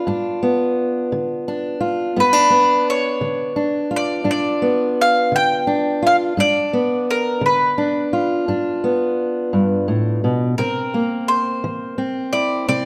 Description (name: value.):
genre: acoustic country blues, solo or duo.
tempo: 57 BPM (dotted quarters).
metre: 12/8.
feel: straight.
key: G mixolydian.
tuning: A4 = 440 Hz.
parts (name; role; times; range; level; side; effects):
mandolin; melody; 0.0-12.9 s; Bb4 to G5; -21 LUFS; equal; none.
fingerpicked steel-string acoustic guitar; accompaniment; 0.0-12.9 s; G2 to F4; -21 LUFS; equal; none.
room: moderate scoring stage reverb, RT60 1.6 s.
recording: close, detailed microphones.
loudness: -19 LUFS.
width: mono.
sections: 0.0-12.9 A section.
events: none.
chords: 0.0 G7; 10.6 C7.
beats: 0.08 1.12 | 2.17 3.22 4.27 5.31 | 6.36 7.41 8.46 9.50 | 10.55 11.61 12.66.